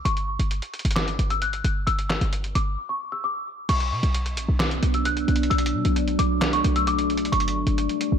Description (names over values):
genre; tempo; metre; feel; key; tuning
hip hop, trap; 132 BPM; 4/4; half-time; B minor; A4 = 440 Hz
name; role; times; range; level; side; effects
small celesta; melody; 0.0-8.2 s; C#6 to F#6; -28 LUFS; left 1 dB; wide subtle chorus, low-pass filter, diffuse ambient delay
short 808-style bass; bass; 0.0-8.2 s; G1 to B2; -24 LUFS; equal; none
lo-fi sampler-style drum kit; drums; 0.1-8.1 s; crash cymbal, handclaps, hi-hat, snare drum; -29 LUFS; equal; none
deep dark ambient pad; sustained chords; 4.5-8.2 s; F#3 to D4; -25 LUFS; equal; chorus, built-in reverb
room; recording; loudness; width
light reverb, digital ambience; none; -21 LUFS; side -8 dB against mid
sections
0.0-3.7 A section; 3.7-8.2 B section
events
break 2.8-3.7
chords
0.1 G5; 3.7 Bm; 7.3 G